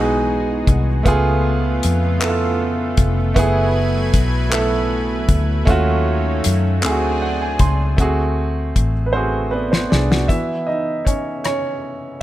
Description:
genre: slow six-eight R&B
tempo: 52 BPM (dotted quarters)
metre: 6/8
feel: straight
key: C# minor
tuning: A4 = 440 Hz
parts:
  - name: warm baby grand piano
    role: accompaniment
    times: 0.0-12.2 s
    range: E3 to C6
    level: -20 LUFS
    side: right 2 dB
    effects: none
  - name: lush unison pad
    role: sustained chords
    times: 0.0-8.0 s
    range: C#3 to G#5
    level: -26 LUFS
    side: left 1 dB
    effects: chorus
  - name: vintage muted fingered electric bass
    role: bass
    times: 0.0-10.3 s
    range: E#1 to F#2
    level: -19 LUFS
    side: left 1 dB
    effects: none
  - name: damped 70s drum kit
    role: drums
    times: 0.7-11.6 s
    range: handclaps, hi-hat, kick drum, rim click, snare drum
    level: -18 LUFS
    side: left 1 dB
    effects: none
room: little or no reverb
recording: none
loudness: -16 LUFS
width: side -14 dB against mid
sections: 0.0-8.0 A section; 8.0-10.3 B section; 10.3-12.2 C section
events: grand piano fill 6.8-8.0; drum fill 9.1-10.3; grand piano solo 10.3-12.2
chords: 0.0 Emaj9; 1.1 C#7b13; 3.4 F#m11; 5.7 D#m7b5; 6.8 D7#11; 10.3 C#m9

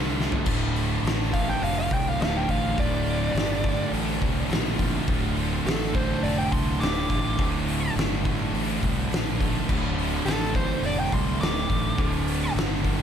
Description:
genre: stoner and doom metal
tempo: 104 BPM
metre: 4/4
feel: straight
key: D minor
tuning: A4 = 440 Hz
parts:
  - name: heavy high-gain guitar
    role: riff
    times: 0.0-13.0 s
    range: D2 to F4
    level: -33 LUFS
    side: equal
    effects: distortion
  - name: thick fuzz guitar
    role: riff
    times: 0.0-13.0 s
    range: D2 to D3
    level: -32 LUFS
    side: left 11 dB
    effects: distortion
  - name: thick fuzz guitar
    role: riff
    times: 0.0-13.0 s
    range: D2 to D3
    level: -29 LUFS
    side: right 10 dB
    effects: distortion
  - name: fuzz fingered electric bass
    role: bass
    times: 0.0-13.0 s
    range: D1 to C2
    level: -29 LUFS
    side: left 1 dB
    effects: overdrive
  - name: oversized low-tuned drum kit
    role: drums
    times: 0.2-13.0 s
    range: crash cymbal, hi-hat, kick drum, snare drum, toms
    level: -28 LUFS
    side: left 1 dB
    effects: none
  - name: fuzz lead guitar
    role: melody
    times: 1.3-12.5 s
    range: A4 to D6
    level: -30 LUFS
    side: right 1 dB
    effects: distortion, analog delay
room: light reverb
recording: none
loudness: -22 LUFS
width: side -8 dB against mid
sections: 0.5-13.0 A section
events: drum fill 0.2; lead electric guitar solo 0.5-13.0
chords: 0.5 Dm

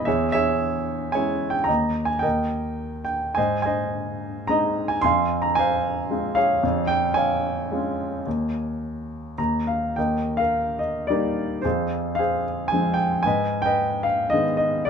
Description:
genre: classical, lyrical solo piano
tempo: 110 BPM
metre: 3/4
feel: rubato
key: Eb major from 10.0 s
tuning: A4 = 439 Hz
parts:
  - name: warm grand piano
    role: solo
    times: 0.0-14.9 s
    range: Eb2 to C6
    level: -21 LUFS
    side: equal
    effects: none
room: moderate small room reverb, RT60 0.6 s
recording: dark, warm production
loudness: -21 LUFS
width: side -6 dB against mid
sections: 0.0-10.0 A section; 10.0-14.9 B section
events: grand piano fill 9.1-10.0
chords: 0.1 Dbm/Fb; 1.7 N.C.; 2.2 Eb; 3.4 Ab; 5.0 Fm; 6.6 Db/F; 8.3 Ebsus4; 9.4 N.C.; 10.0 Eb; 11.6 Fm; 13.3 Abm

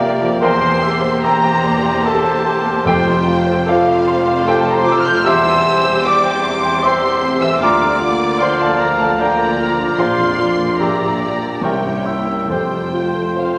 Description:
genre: classical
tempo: 66-78 BPM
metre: 3/4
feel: rubato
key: F major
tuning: A4 = 440 Hz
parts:
  - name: warm grand piano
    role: melody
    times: 0.0-13.6 s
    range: Bb1 to G6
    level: -18 LUFS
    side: equal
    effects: none
  - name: warm studio violin section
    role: melody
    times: 0.0-13.6 s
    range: C5 to D5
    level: -28 LUFS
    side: equal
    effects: none
  - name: warm cor anglais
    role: second line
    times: 0.0-13.6 s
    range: Bb4 to G5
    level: -26 LUFS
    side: equal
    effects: none
  - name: dark studio viola section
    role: accompaniment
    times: 0.0-13.6 s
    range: G3 to G4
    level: -26 LUFS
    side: equal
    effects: none
  - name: dark French horn section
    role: sustained chords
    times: 0.0-13.6 s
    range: F3 to G4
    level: -31 LUFS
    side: equal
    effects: none
  - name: rich studio cello section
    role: bass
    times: 0.0-13.6 s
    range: D2 to C3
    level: -31 LUFS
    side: equal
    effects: none
  - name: warm studio double bass section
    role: bass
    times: 0.0-13.6 s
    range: E1 to D2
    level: -35 LUFS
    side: equal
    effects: none
  - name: dark studio violin section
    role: second line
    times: 0.4-13.6 s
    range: F5 to G6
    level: -25 LUFS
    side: equal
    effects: none
  - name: flute section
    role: second line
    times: 0.4-12.9 s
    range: G5 to D6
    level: -29 LUFS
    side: equal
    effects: none
  - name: warm clarinet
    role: second line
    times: 0.4-12.8 s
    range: F4 to Bb4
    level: -27 LUFS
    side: equal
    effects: none
  - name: timpani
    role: percussion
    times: 2.9-4.0, 12.5-13.6 s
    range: F2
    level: -33 LUFS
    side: equal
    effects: none
room: wet scoring stage reverb, RT60 1.9 s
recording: none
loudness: -15 LUFS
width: mono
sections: 0.0-13.6 A section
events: none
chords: 0.4 C7/E; 2.9 F; 5.2 C/E; 7.6 Bb/D; 10.0 Bb; 10.8 Gm/Bb; 11.6 C7b9; 12.5 F

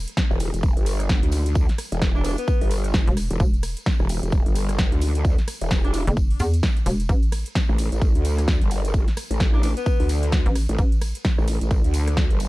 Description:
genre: bass house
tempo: 130 BPM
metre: 4/4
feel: swing 59% on 16ths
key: E minor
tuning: A4 = 440 Hz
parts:
  - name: hollow knocking FM bass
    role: bass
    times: 0.0-0.1, 3.1-7.4, 10.5-11.1 s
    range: E1 to E2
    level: -22 LUFS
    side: equal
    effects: overdrive, sidechain pumping
  - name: big-room dance drum kit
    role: drums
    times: 0.1-12.5 s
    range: hi-hat, ride cymbal, rim click, snare drum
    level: -30 LUFS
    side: equal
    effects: none
  - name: tambourine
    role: percussion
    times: 0.1-12.5 s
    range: none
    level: -41 LUFS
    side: left 5 dB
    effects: none
  - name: electronic kick drum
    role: drums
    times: 0.2-12.3 s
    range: none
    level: -20 LUFS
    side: equal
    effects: none
  - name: growl bass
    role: bass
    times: 0.3-12.5 s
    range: E1 to D2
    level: -22 LUFS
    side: equal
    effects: chorus, tube saturation, sidechain pumping
  - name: warm alto saxophone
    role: melody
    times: 2.2-2.7, 5.8-6.0, 9.5-10.1 s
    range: B3 to D4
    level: -32 LUFS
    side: left 2 dB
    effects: ping-pong delay
room: little or no reverb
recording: dark, warm production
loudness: -19 LUFS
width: side -19 dB against mid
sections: 0.0-12.5 A section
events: none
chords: 0.0 Em; 7.1 Asus4

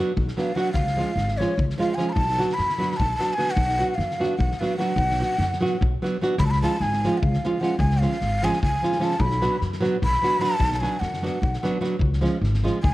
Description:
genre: balkan folk, Balkan wedding band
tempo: 298 BPM (eighths)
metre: 7/8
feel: straight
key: B dorian sharp4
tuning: A4 = 439 Hz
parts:
  - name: flamenco guitar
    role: accompaniment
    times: 0.0-12.8 s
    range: E#3 to F#4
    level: -26 LUFS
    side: right 2 dB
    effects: none
  - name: upright bass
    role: bass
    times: 0.2-12.9 s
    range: G#1 to F#2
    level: -25 LUFS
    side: equal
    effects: none
  - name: loose indie drum kit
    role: percussion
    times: 0.2-12.9 s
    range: kick drum, snare drum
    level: -29 LUFS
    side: left 1 dB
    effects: none
  - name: breathy mellow ney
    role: melody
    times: 0.4-12.9 s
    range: C#5 to B5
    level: -26 LUFS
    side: equal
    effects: none
room: light reverb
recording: worn, warbling old tape, cassette tape, warbly pitch drift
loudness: -20 LUFS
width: side -17 dB against mid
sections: 0.0-12.9 A section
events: ney solo 0.0-12.9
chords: 0.0 Bm; 0.7 C#; 2.2 Bm; 6.4 C#; 9.2 Bm; 12.0 C#

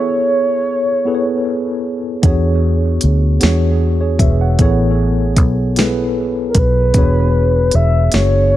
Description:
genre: slow six-eight R&B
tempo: 51 BPM (dotted quarters)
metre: 6/8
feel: straight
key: unclear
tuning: A4 = 441 Hz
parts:
  - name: mellow horn-like synth lead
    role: melody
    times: 0.0-1.9, 6.5-8.6 s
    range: A#4 to E5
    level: -16 LUFS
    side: equal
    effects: chorus, analog delay
  - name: mellow tine electric piano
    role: accompaniment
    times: 0.0-8.6 s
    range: B3 to F#5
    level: -18 LUFS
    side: equal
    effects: medium stereo tremolo, analog delay
  - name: vintage muted fingered electric bass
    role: bass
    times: 2.2-8.6 s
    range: E1 to E2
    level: -14 LUFS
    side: equal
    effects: none
  - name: smooth R&B drum kit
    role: drums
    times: 2.2-8.3 s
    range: hi-hat, kick drum, snare drum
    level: -14 LUFS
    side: equal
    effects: none
room: little or no reverb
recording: echo-heavy mix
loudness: -12 LUFS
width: side -13 dB against mid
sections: 0.0-8.6 A section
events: none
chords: 0.0 Amaj9; 2.2 E13; 4.6 Amaj9; 6.9 E13

